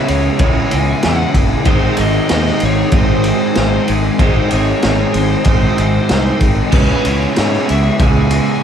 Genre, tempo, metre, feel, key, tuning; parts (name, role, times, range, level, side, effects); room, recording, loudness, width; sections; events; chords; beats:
rock, shoegaze and dream pop; 95 BPM; 4/4; straight; C# minor; A4 = 440 Hz
fuzz lead guitar; melody; 0.0-8.6 s; B4 to G#5; -22 LUFS; left 5 dB; distortion, tape echo
sweeping resonant pad; sustained chords; 0.0-8.6 s; E4 to D#6; -29 LUFS; right 2 dB; chorus
fingerpicked twelve-string acoustic guitar; arpeggios; 0.0-8.6 s; E4 to D#5; -32 LUFS; right 4 dB
crunchy overdriven guitar; riff; 0.0-8.6 s; G#2 to E4; -21 LUFS; left 10 dB; lush chorus
overdriven electric guitar; riff; 0.0-8.6 s; G#2 to C#4; -20 LUFS; right 2 dB
twangy electric guitar; riff; 0.0-8.6 s; G#2 to E4; -20 LUFS; right 13 dB; reverse reverb
fuzz fingered electric bass; bass; 0.1-8.4 s; F#1 to G#2; -17 LUFS; equal; overdrive
raw garage drum kit; drums; 0.1-8.5 s; crash cymbal, kick drum, ride cymbal, snare drum; -16 LUFS; equal
small room ambience; dark, warm production; -11 LUFS; side -8 dB against mid
0.0-8.6 A section
0.0 C#m7; 1.7 G#; 6.7 C#m7
0.41 1.04 | 1.67 2.31 2.94 3.57 | 4.20 4.84 5.47 6.10 | 6.74 7.37 8.00